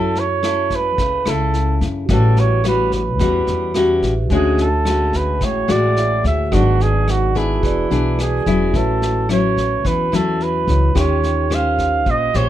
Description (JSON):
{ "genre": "bossa nova", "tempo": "108 BPM", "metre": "4/4", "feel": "straight", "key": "F# minor", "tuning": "A4 = 443 Hz", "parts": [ { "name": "warm flugelhorn", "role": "melody", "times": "0.0-12.5 s", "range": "E4 to E#5", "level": "-20 LUFS", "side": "right 4 dB", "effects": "none" }, { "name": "mellow tine electric piano", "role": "accompaniment", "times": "0.0-12.5 s", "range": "E4 to B#5", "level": "-27 LUFS", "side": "right 6 dB", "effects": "none" }, { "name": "nylon-string guitar", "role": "accompaniment", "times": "0.0-12.5 s", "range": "G#2 to B#4", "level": "-20 LUFS", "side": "left 4 dB", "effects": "none" }, { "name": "upright bass", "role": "bass", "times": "0.0-12.5 s", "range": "E1 to F#2", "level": "-19 LUFS", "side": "equal", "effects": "none" }, { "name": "vintage brush drum kit", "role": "drums", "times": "0.2-12.4 s", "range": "kick drum, rim click, snare drum", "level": "-25 LUFS", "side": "equal", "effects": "none" } ], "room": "light reverb", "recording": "dark, warm production", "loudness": "-15 LUFS", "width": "side -12 dB against mid", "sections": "0.0-8.7 A section; 8.7-12.5 B section", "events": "none", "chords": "0.0 F#m7; 2.1 A13; 4.3 Dmaj9#11; 6.5 G#m7b5; 7.6 E7; 8.7 A6; 11.0 D#13", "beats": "0.43 0.98 1.54 | 2.09 2.65 3.20 3.75 | 4.31 4.86 5.42 5.97 | 6.53 7.08 7.63 8.19 | 8.74 9.29 9.85 10.40 | 10.96 11.51 12.06" }